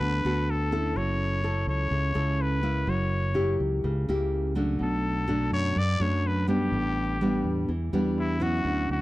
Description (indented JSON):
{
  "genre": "bossa nova",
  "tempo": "125 BPM",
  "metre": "4/4",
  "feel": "straight",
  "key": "unclear",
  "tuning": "A4 = 440 Hz",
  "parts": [
    { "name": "trumpet with straight mute", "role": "melody", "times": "0.0-9.0 s", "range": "E4 to D5", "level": "-31 LUFS", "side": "left 2 dB", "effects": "none" },
    { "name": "nylon-string guitar", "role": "accompaniment", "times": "0.0-9.0 s", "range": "F#2 to A4", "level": "-28 LUFS", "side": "equal", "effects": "none" },
    { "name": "fingered electric bass", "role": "bass", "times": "0.0-9.0 s", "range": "F#1 to F#2", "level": "-28 LUFS", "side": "equal", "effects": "none" }
  ],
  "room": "small room ambience",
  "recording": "dry, close 1970s-style studio recording",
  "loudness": "-24 LUFS",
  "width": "side -17 dB against mid",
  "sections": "0.0-8.7 A section",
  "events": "muted trumpet solo 0.0-8.7",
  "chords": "0.0 Gmaj9 (rootless); 1.0 F#m7; 2.9 F#7b9; 4.8 Bm7; 6.7 A9sus4",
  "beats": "0.00 0.48 | 0.96 1.44 1.92 2.40 | 2.88 3.36 3.84 4.32 | 4.80 5.29 5.76 6.25 | 6.73 7.21 7.69 8.17 | 8.65"
}